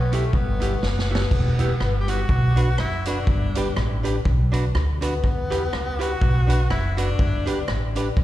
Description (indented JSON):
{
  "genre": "ska",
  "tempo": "122 BPM",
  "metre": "4/4",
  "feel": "swing 56% on 8ths",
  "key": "E dorian",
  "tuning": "A4 = 439 Hz",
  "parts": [
    { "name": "edgy tenor saxophone", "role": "melody", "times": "0.0-7.7 s", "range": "A3 to G4", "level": "-29 LUFS", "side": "left 3 dB", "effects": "analog delay, plate reverb, slapback echo" },
    { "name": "upright bass", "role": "bass", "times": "0.0-8.2 s", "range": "E1 to E2", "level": "-22 LUFS", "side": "equal", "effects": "none" },
    { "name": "archtop guitar, miked and amplified", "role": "accompaniment", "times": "0.1-8.1 s", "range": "B3 to B4", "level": "-29 LUFS", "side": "right 2 dB", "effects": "plate reverb, slapback echo" },
    { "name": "vintage drum kit", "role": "drums", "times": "0.1-8.2 s", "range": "crash cymbal, hi-hat, kick drum, rim click, snare drum", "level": "-26 LUFS", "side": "equal", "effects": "analog delay" }
  ],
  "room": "light reverb",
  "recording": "live gig heard through the venue's PA, recital hall reverb",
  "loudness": "-19 LUFS",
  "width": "side -14 dB against mid",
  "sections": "0.0-1.3 A section; 1.3-8.2 B section",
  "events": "drum fill 0.8-1.3",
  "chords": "0.0 Em; 2.3 Bm; 3.3 G; 4.3 Bm; 5.2 Em; 6.2 Bm; 7.2 G",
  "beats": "0.33 0.82 | 1.31 1.80 2.30 2.79 | 3.28 3.77 4.26 4.75 | 5.24 5.72 6.21 6.70 | 7.19 7.68 8.17"
}